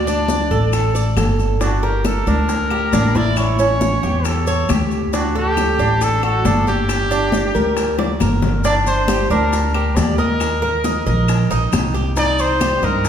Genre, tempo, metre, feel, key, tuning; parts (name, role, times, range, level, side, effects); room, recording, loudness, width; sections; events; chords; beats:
latin, Cuban son and guajira; 136 BPM; 4/4; straight; G harmonic minor, G minor from 8.6 s; A4 = 441 Hz
clear trumpet; melody; 0.0-13.1 s; F#4 to D5; -22 LUFS; equal
Cuban tres; arpeggios; 0.0-13.1 s; C#4 to Eb5; -21 LUFS; right 2 dB
upright bass; bass; 0.0-13.1 s; G1 to G2; -19 LUFS; equal
bongos; percussion; 0.1-13.1 s; -26 LUFS; left 4 dB
congas; percussion; 0.1-13.1 s; -25 LUFS; left 2 dB
maracas; percussion; 0.1-13.1 s; -34 LUFS; left 4 dB
claves; percussion; 0.7-12.8 s; -34 LUFS; left 6 dB
wet recital hall reverb, RT60 1.8 s; heard from further back in the room; -15 LUFS; side -8 dB against mid
0.0-8.6 A section; 8.6-13.1 B section
drum fill 8.0-8.6
0.0 D5; 1.6 Gm; 3.4 A7; 5.1 D; 6.9 Gm; 10.4 Eb5; 12.2 Cm
0.29 0.73 1.17 | 1.61 2.05 2.49 2.93 | 3.37 3.81 4.25 4.69 | 5.13 5.57 6.01 6.45 | 6.89 7.33 7.77 8.21 | 8.65 9.09 9.53 9.97 | 10.41 10.85 11.29 11.73 | 12.17 12.61 13.05